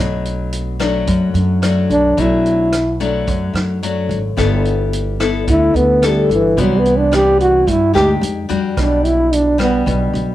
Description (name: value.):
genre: bossa nova.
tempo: 109 BPM.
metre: 4/4.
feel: straight.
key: unclear.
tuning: A4 = 439 Hz.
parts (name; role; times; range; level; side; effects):
nylon-string guitar; accompaniment; 0.0-10.3 s; F#2 to A4; -19 LUFS; left 5 dB; plate reverb.
upright bass; bass; 0.0-10.3 s; G1 to G2; -18 LUFS; right 2 dB; none.
vintage drum kit; drums; 0.3-10.3 s; hi-hat, kick drum, rim click; -24 LUFS; right 2 dB; none.
breathy trombone; melody; 1.9-9.9 s; E3 to G4; -14 LUFS; right 1 dB; cassette tape, plate reverb.
room: moderate studio reverb, RT60 0.6 s.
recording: home recording on cassette.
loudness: -13 LUFS.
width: side -14 dB against mid.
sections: 0.0-10.3 A section.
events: trombone solo 0.0-10.3.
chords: 0.0 Bm7; 4.4 G69; 6.6 Cmaj9; 8.2 Fm9; 8.8 Em9/B (rootless).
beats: 0.52 1.07 1.62 | 2.17 2.72 3.27 3.82 | 4.37 4.92 5.47 6.02 | 6.57 7.12 7.67 8.22 | 8.77 9.32 9.87.